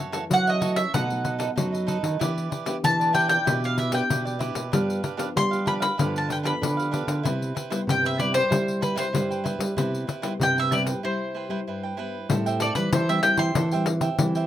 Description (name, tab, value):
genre	samba and choro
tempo	95 BPM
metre	4/4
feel	straight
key	C major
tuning	A4 = 440 Hz
part	cavaquinho	accompaniment	0.0-14.5 s	D4 to G5	-32 LUFS	right 6 dB	none
part	nylon-string guitar	accompaniment	0.0-14.5 s	F#2 to G4	-33 LUFS	left 2 dB	none
part	pandeiro	percussion	0.1-14.5 s	none	-28 LUFS	left 4 dB	none
part	bowl-back mandolin	melody	0.3-14.5 s	B4 to C6	-24 LUFS	equal	none
part	nylon-string guitar	bass	0.3-14.5 s	A2 to G3	-27 LUFS	right 1 dB	none
room	moderate small room ambience, RT60 0.5 s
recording	rough home demo mix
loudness	-22 LUFS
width	side -12 dB against mid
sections	0.0-12.3 A section; 12.3-14.5 B section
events	break 11.0-12.3; mandolin solo 12.3-14.5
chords	0.0 F#m7; 0.9 B7; 2.2 Em7; 4.7 G7; 7.3 Cmaj7; 12.3 Am7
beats	0.31 0.94 1.57 | 2.21 2.84 3.47 4.10 | 4.73 5.36 5.99 6.62 | 7.25 7.88 8.51 9.14 | 9.78 10.40 11.04 11.66 | 12.29 12.93 13.55 14.18